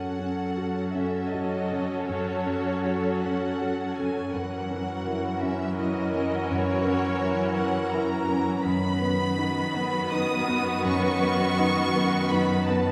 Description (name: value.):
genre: cinematic, emotional film score for orchestra.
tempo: 82 BPM.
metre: 3/4.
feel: rubato.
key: unclear.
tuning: A4 = 441 Hz.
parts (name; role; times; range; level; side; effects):
warm symphonic violin section; melody; 0.0-12.9 s; C#5 to D#6; -35 LUFS; equal; none.
rich symphonic violin section; second line; 0.0-12.9 s; F#4 to B4; -34 LUFS; equal; none.
clear symphonic viola section; accompaniment; 0.0-12.9 s; D#3 to C#4; -34 LUFS; equal; none.
warm grand piano; accompaniment; 0.0-12.9 s; F#2 to B4; -31 LUFS; equal; none.
rich symphonic cello section; bass; 0.0-12.9 s; F#2; -33 LUFS; equal; none.
room: wet concert hall reverb, RT60 1.9 s.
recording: heard from further back in the room.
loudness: -26 LUFS.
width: mono.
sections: 0.0-12.9 A section.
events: none.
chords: 0.0 F#m; 4.3 F#7; 8.7 B/F#.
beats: 0.57 1.32 | 2.08 2.83 3.60 | 4.34 5.07 5.79 | 6.51 7.23 7.94 | 8.65 9.38 10.12 | 10.85 11.59 12.32.